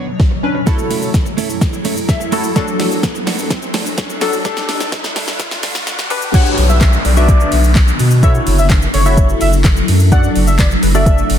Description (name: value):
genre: dance-pop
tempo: 127 BPM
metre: 4/4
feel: straight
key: B minor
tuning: A4 = 441 Hz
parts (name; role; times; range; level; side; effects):
- granular cloud pad; sustained chords; 0.0-11.4 s; F#2 to C#5; -22 LUFS; equal; built-in reverb, sidechain pumping
- twelve-string electric guitar; riff; 0.0-6.3 s; G3 to A4; -23 LUFS; right 6 dB; wide subtle chorus
- riser and downlifter; sound effects; 1.3-10.1 s; none; -25 LUFS; equal; none
- smooth R&B drum kit; drums; 0.2-11.4 s; crash cymbal, handclaps, hi-hat, kick drum, shaker, snare drum; -15 LUFS; equal; none
- glassy digital keys; accompaniment; 0.4-11.4 s; F#3 to A5; -20 LUFS; left 2 dB; chorus, sidechain pumping
- octave-doubled lead; melody; 6.3-11.3 s; C#5 to F#5; -21 LUFS; equal; chorus, tape echo
- saturated sub bass; bass; 6.6-11.4 s; F#1 to B2; -13 LUFS; equal; sidechain pumping
room: light reverb, digital ambience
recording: dense, heavily limited modern master, high-pass filter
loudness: -11 LUFS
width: side -9 dB against mid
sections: 0.0-6.3 A section; 6.3-11.4 B section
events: build-up 0.0-6.3; drum fill 0.0-6.3; filter sweep 0.0-6.3; riser 1.3-6.3; synth keys fill 1.9-2.6; drop 6.3-11.4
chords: 0.0 Bmadd9; 0.7 F#m7; 2.6 D/F#; 4.5 Gsus2; 6.3 Bmadd9; 8.2 F#m7; 10.1 D/F#